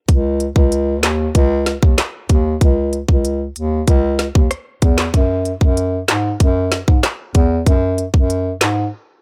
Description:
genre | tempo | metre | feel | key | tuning
dancehall | 95 BPM | 4/4 | straight | unclear | A4 = 440 Hz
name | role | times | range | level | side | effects
dark bass clarinet | bass | 0.1-8.9 s | C#2 to G#2 | -20 LUFS | equal | none
island pop drum kit | drums | 0.1-8.8 s | handclaps, hi-hat, kick drum, rim click, snare drum | -16 LUFS | equal | none
room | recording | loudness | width
little or no reverb | none | -16 LUFS | mono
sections
0.0-9.2 A section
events
break 8.9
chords
none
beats
| 0.09 0.72 1.35 1.98 | 2.61 3.24 3.88 4.51 | 5.14 5.77 6.40 7.03 | 7.67 8.30

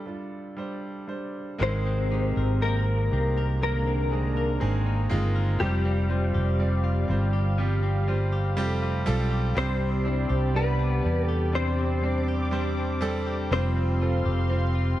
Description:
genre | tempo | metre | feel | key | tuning
pop ballad | 61 BPM | 4/4 | straight | unclear | A4 = 439 Hz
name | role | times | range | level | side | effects
direct-recorded clean electric guitar | melody | 0.0-15.0 s | G3 to C5 | -30 LUFS | left 3 dB | ensemble chorus
clear grand piano | accompaniment | 0.0-15.0 s | G2 to D5 | -32 LUFS | right 2 dB | none
mellow French horn section | second line | 1.6-15.0 s | C3 to A4 | -36 LUFS | right 6 dB | none
warm analog pad | sustained chords | 2.1-15.0 s | G4 to D6 | -38 LUFS | right 1 dB | chorus
direct-recorded clean electric guitar | arpeggios | 1.6-15.0 s | C3 to Bb4 | -38 LUFS | left 6 dB | ping-pong delay
mellow fretless electric bass | bass | 1.6-15.0 s | F1 to E2 | -25 LUFS | equal | none
room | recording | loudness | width
small room ambience | none | -23 LUFS | side -14 dB against mid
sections
0.0-1.6 A section; 1.6-15.0 B section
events
none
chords
0.0 Gsus4; 1.6 Abadd9; 5.6 Fsus2; 9.6 Csus2; 13.5 Fsus2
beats
0.59 | 1.61 2.62 3.62 4.61 | 5.60 6.59 7.58 8.57 | 9.55 10.54 11.53 12.52 | 13.51 14.50

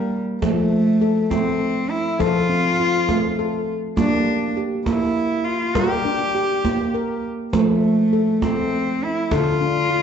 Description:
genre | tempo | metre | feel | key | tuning
world meditative, meditative tuned percussion | 68 BPM (dotted quarters) | 6/8 | straight | unclear | A4 = 439 Hz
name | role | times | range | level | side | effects
warm cello | melody | 0.0-10.0 s | G3 to G4 | -21 LUFS | left 1 dB | none
handpan | arpeggios | 0.0-10.0 s | D3 to Bb4 | -21 LUFS | equal | none
cajon | percussion | 0.1-9.7 s | none | -28 LUFS | right 2 dB | none
room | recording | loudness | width
wet recital hall reverb, RT60 1.6 s | dark, warm production, nothing above 7.9 kHz | -18 LUFS | side -7 dB against mid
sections
0.0-10.0 A section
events
none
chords
0.4 F; 4.0 Gm; 7.5 F; 9.3 Dm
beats
| 0.42 1.31 | 2.20 3.08 | 3.97 4.86 | 5.75 6.64 | 7.53 8.42 | 9.31

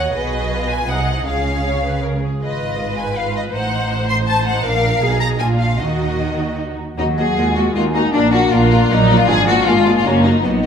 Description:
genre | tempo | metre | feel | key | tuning
classical, dramatic, fast romantic movement for symphony orchestra | 157 BPM | 3/4 | straight | Eb minor | A4 = 440 Hz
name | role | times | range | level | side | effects
rich symphonic violin section | melody | 0.0-10.7 s | D5 to C6 | -24 LUFS | left 3 dB | none
rich symphonic violin section | second line | 0.0-10.7 s | Cb4 to D#5 | -20 LUFS | left 4 dB | none
rich symphonic viola section | accompaniment | 0.0-10.5 s | Bb3 to D#5 | -23 LUFS | right 1 dB | none
rich symphonic double bass section | bass | 0.0-10.7 s | Gb1 to D#2 | -21 LUFS | right 2 dB | none
warm symphonic cello section | bass | 0.0-10.7 s | D#2 to Bb3 | -22 LUFS | right 2 dB | none
large flute ensemble | second line | 7.0-10.7 s | Eb5 to Bb5 | -25 LUFS | left 1 dB | none
warm clarinet | second line | 7.0-10.7 s | D4 to Gb4 | -25 LUFS | left 1 dB | none
warm French horn section | sustained chords | 7.0-10.7 s | Gb3 to Gb4 | -23 LUFS | left 4 dB | none
room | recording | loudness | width
moderate scoring stage reverb, RT60 1.7 s | none | -14 LUFS | side -7 dB against mid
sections
0.0-7.0 A section; 7.0-10.7 B section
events
none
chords
0.1 B6; 0.9 G#7/B#; 1.3 C#; 2.4 Fm7b5/Ab; 3.5 Adim7; 4.7 Bb; 5.0 Abm/Cb; 5.4 Bb; 5.8 Ebm; 8.1 Bb; 9.3 Bb7/Ab; 10.1 Ebm/Gb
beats
| 0.15 0.52 0.89 | 1.27 1.65 2.04 | 2.42 2.80 3.17 | 3.55 3.92 4.28 | 4.65 5.02 5.40 | 5.79 6.19 6.58 | 6.97 7.36 7.75 | 8.13 8.52 8.90 | 9.28 9.66 10.05 | 10.44

